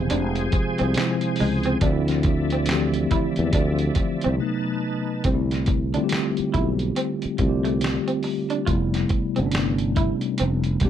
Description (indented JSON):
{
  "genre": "R&B, neo-soul",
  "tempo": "70 BPM",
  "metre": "4/4",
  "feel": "swing 61% on 16ths",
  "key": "C major",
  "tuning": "A4 = 438 Hz",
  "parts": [
    { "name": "mellow tine electric piano", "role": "accompaniment", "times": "0.0-10.9 s", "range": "C3 to Ab4", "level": "-24 LUFS", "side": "left 1 dB", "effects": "medium stereo tremolo" },
    { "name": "bright tonewheel organ", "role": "sustained chords", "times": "0.0-5.2 s", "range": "F3 to A5", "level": "-31 LUFS", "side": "equal", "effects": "fast rotary speaker, chorus vibrato" },
    { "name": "sustaining fretless electric bass", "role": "bass", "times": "0.0-10.9 s", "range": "E1 to E2", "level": "-24 LUFS", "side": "equal", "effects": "none" },
    { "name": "electric guitar through a small old amp", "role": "second line", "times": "0.1-10.9 s", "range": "Ab3 to F4", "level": "-28 LUFS", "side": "right 3 dB", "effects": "none" },
    { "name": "dusty soul sampler-style drum kit", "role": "drums", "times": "0.1-10.9 s", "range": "hi-hat, kick drum, snare drum", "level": "-26 LUFS", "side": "equal", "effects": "none" }
  ],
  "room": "light reverb",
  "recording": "dark, warm production",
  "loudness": "-20 LUFS",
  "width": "side -10 dB against mid",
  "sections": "0.0-5.2 A section; 5.2-10.9 B section",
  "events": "break 4.4-5.2",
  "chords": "0.0 Fm; 1.8 Dm9; 4.4 B7b9; 5.2 C6; 8.7 Fmaj9#11"
}